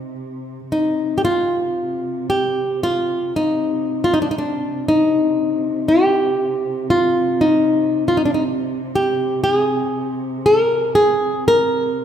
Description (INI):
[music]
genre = caucasian folk, Caucasian lament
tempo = 56-60 BPM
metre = 4/4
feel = rubato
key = C minor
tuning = A4 = 440 Hz
[part]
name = flamenco guitar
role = melody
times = 0.0-12.0 s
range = D4 to Bb4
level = -16 LUFS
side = equal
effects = none
[part]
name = dark chamber cello section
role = drone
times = 0.0-12.0 s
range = C3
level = -26 LUFS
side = right 1 dB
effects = none
[sound]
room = moderate concert hall reverb, RT60 2.2 s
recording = recorded in a church or concert hall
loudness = -16 LUFS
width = side -9 dB against mid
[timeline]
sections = 0.0-12.0 A section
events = none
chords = none